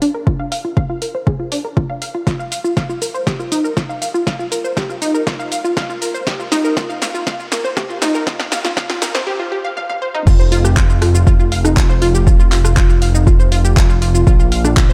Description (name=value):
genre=progressive house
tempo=120 BPM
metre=4/4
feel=straight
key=unclear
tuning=A4 = 440 Hz
part: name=unison pluck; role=arpeggios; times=0.0-14.9 s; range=D4 to F5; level=-22 LUFS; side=equal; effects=sidechain pumping, tape echo
part: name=deep house drum kit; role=drums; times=0.0-14.9 s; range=crash cymbal, handclaps, hi-hat, rim click, shaker, snare drum, toms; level=-24 LUFS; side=equal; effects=overdrive, high-pass filter on hats, high-pass filter on snare, high-pass filter on perc, high-pass filter on toms, high-pass filter on cymbals, high-pass filter on room
part: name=electronic kick drum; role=drums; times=0.3-14.9 s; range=none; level=-16 LUFS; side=equal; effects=none
part: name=fat analog bass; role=bass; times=10.3-14.9 s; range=F1 to Bb1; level=-17 LUFS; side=equal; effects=sidechain pumping
room=light reverb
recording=dark, warm production, high-pass filter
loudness=-16 LUFS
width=mono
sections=0.0-10.3 A section; 10.3-14.9 B section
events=build-up 0.0-10.3; filter sweep on synth pluck 0.0-10.3; filter sweep 0.0-10.3; drum fill 2.3-9.3, 9.8-10.3; drop 10.3-14.9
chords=0.0 Bb5; 2.3 N.C.; 14.3 Bb5